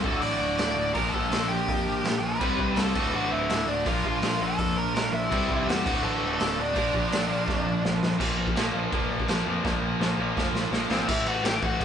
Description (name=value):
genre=punk rock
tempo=166 BPM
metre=4/4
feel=straight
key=unclear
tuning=A4 = 439 Hz
part: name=bluesy overdriven lead guitar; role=melody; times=0.0-7.8, 10.9-11.8 s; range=C4 to D6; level=-28 LUFS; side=equal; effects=distortion
part: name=biting overdriven guitar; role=riff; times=0.0-11.8 s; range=D2 to C4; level=-30 LUFS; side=left 5 dB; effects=none
part: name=distorted electric guitar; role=riff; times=0.0-11.1 s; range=D2 to C5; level=-30 LUFS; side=right 5 dB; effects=distortion
part: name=growling picked electric bass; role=bass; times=0.0-11.8 s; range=D1 to F2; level=-34 LUFS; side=equal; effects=overdrive
part: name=raw garage drum kit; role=drums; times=0.0-11.8 s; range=crash cymbal, hi-hat, kick drum, snare drum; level=-29 LUFS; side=equal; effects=none
room=moderate studio ambience, RT60 0.5 s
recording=band playing live in one room, nothing above 10.5 kHz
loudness=-23 LUFS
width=side -8 dB against mid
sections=0.0-8.2 A section; 8.2-11.1 B section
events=drum fill 7.5-8.2, 9.6-11.1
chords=0.0 D; 0.9 Bb; 2.4 C; 2.9 D; 3.9 Bb; 5.3 C; 5.9 D; 6.8 Bb; 8.2 Bb5; 11.1 A5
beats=0.22 0.58 | 0.95 1.31 1.68 2.04 | 2.40 2.77 3.13 3.49 | 3.86 4.22 4.58 4.95 | 5.31 5.67 6.03 6.39 | 6.76 7.12 7.48 7.84 | 8.20 8.56 8.92 9.29 | 9.64 10.01 10.37 10.72 | 11.09 11.44 11.80